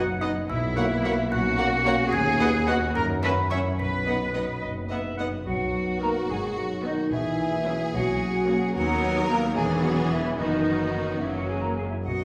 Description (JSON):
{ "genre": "cinematic, playful, whimsical film cue", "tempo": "73 BPM (dotted quarters)", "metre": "6/8", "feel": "straight", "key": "B major", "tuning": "A4 = 440 Hz", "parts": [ { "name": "music box", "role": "melody", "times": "0.0-4.6 s", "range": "D#6 to C#7", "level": "-38 LUFS", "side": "equal", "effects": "none" }, { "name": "rich studio violin section", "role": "melody", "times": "0.0-11.8 s", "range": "C#4 to F#5", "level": "-39 LUFS", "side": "equal", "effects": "none" }, { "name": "bright clarinet", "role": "second line", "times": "0.0-12.2 s", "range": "D#4 to F#5", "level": "-35 LUFS", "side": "equal", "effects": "none" }, { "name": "rich studio violin section", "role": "second line", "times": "0.0-12.2 s", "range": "F#4 to E5", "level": "-38 LUFS", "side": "equal", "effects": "none" }, { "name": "silver concert flute", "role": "second line", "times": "0.0-12.2 s", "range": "D#5 to C#6", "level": "-33 LUFS", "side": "equal", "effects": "none" }, { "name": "mellow bassoon", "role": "accompaniment", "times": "0.0-5.3 s", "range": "A#3 to C#4", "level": "-37 LUFS", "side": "equal", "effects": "none" }, { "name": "mellow French horn section", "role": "sustained chords", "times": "0.0-12.2 s", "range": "D#3 to F#4", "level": "-34 LUFS", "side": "equal", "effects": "none" }, { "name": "concert harp", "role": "arpeggios", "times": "0.0-12.2 s", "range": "F#2 to B4", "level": "-34 LUFS", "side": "equal", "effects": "none" }, { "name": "rich studio cello section", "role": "bass", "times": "0.0-12.2 s", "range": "D#2 to C#5", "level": "-33 LUFS", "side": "equal", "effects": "none" }, { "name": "rich studio double bass section", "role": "bass", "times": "0.0-12.2 s", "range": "E1 to F#2", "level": "-33 LUFS", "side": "equal", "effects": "none" }, { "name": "clear studio viola section", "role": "accompaniment", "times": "0.2-11.8 s", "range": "D#3 to C#4", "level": "-35 LUFS", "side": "equal", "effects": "none" } ], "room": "wet recital hall reverb, RT60 1.7 s", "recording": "recorded in a church or concert hall", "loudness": "-25 LUFS", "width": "mono", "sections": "0.0-5.5 A section; 5.5-12.2 A section", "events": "none", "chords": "0.5 F#7/B; 2.1 B/D#; 3.0 F#7; 3.8 B; 7.1 F#7/B; 8.7 B/D#; 9.6 C#m7/E; 10.4 B/F#; 11.2 F#" }